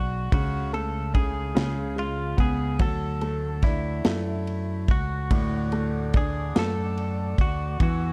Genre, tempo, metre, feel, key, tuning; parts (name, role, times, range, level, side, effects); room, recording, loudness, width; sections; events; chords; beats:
six-eight pop ballad; 48 BPM (dotted quarters); 6/8; straight; A4 = 441 Hz
direct-recorded clean electric guitar; melody; 0.0-8.1 s; E4 to A4; -35 LUFS; equal
bright upright piano; accompaniment; 0.0-8.1 s; A2 to D4; -34 LUFS; equal
fingered electric bass; bass; 0.0-8.1 s; B1 to F#2; -31 LUFS; equal
modern studio drum kit; drums; 0.3-8.0 s; kick drum, ride cymbal, snare drum; -26 LUFS; equal
mellow tonewheel organ; sustained chords; 5.3-8.1 s; A3 to E6; -38 LUFS; equal; slow rotary speaker
light reverb; dark, warm production; -26 LUFS; mono
0.0-8.1 A section
0.3 F#madd9/C#; 1.6 C#5; 2.8 D
| 0.33 1.56 | 2.80 4.05 | 5.31 6.56 | 7.80